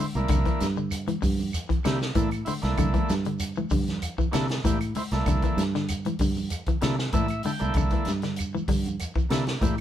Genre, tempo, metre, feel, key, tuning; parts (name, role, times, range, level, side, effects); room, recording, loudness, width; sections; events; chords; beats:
afrobeat; 96 BPM; 4/4; straight; C mixolydian; A4 = 440 Hz
combo organ; accompaniment; 0.0-9.8 s; Bb3 to G5; -31 LUFS; right 2 dB
semi-hollow electric guitar; arpeggios; 0.0-9.8 s; D3 to E3; -31 LUFS; left 4 dB
congas; percussion; 0.0-9.8 s; -34 LUFS; equal
vintage drum kit; drums; 0.1-9.8 s; hi-hat, kick drum, snare drum; -28 LUFS; equal
fingered electric bass; bass; 0.2-9.8 s; C2 to C3; -28 LUFS; right 1 dB
shekere; percussion; 0.2-9.8 s; -37 LUFS; right 1 dB
claves; percussion; 0.3-9.8 s; -44 LUFS; right 8 dB
light reverb; band playing live in one room; -24 LUFS; side -11 dB against mid
0.0-9.8 A section
transistor combo organ fill 6.8-7.8
0.0 C13
| 0.30 0.92 1.54 2.16 | 2.79 3.41 4.03 4.65 | 5.27 5.89 6.51 7.14 | 7.76 8.38 9.00 9.62